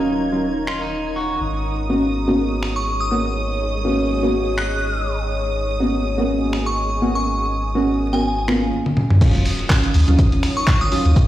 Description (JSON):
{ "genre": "deep house", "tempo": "123 BPM", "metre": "4/4", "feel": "swing 56% on 16ths", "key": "G# dorian", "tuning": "A4 = 440 Hz", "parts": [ { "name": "electric guitar at the edge of break-up", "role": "melody", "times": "0.0-1.4 s", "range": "D#4 to F#4", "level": "-30 LUFS", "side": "equal", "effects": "spring reverb, dub echo" }, { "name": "deep dark ambient pad", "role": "sustained chords", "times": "0.0-11.3 s", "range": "F#3 to C#6", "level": "-30 LUFS", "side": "left 1 dB", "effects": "chorus, built-in reverb, sidechain pumping" }, { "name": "deep mellow chord stab", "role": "stabs", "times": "0.0-11.1 s", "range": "F#3 to F#4", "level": "-21 LUFS", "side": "equal", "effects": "lush chorus, sidechain pumping, dub echo" }, { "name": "round analog bass", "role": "bass", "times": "0.0-11.3 s", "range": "D#1 to D#2", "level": "-23 LUFS", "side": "equal", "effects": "sidechain pumping" }, { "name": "dark chamber violin section", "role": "texture", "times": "0.0-11.3 s", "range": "D#6 to G#6", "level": "-33 LUFS", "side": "right 3 dB", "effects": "sidechain pumping" }, { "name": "granular cloud pad", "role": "texture", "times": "0.0-11.3 s", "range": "D#4 to D#5", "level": "-31 LUFS", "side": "right 1 dB", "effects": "built-in reverb, sidechain pumping" }, { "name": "dusty soul sampler-style drum kit", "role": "drums", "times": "0.7-11.3 s", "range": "crash cymbal, finger snaps, handclaps, hi-hat, toms", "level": "-21 LUFS", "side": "equal", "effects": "none" }, { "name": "glassy synth bell", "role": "melody", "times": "2.8-11.0 s", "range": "G#5 to F#6", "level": "-25 LUFS", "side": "equal", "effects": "chorus, digital delay" }, { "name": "electronic kick drum", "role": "drums", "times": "9.2-11.3 s", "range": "none", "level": "-16 LUFS", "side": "equal", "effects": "none" } ], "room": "light reverb, digital ambience", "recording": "played on a big sound system in a bare room, stone room reverb, vinyl crackle", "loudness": "-17 LUFS", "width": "side -13 dB against mid", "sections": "0.0-9.2 A section; 9.2-11.3 B section", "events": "drum fill 8.8-9.2; drop 9.2-11.3", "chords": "0.0 D#m9; 1.4 G#m11; 9.2 D#m9" }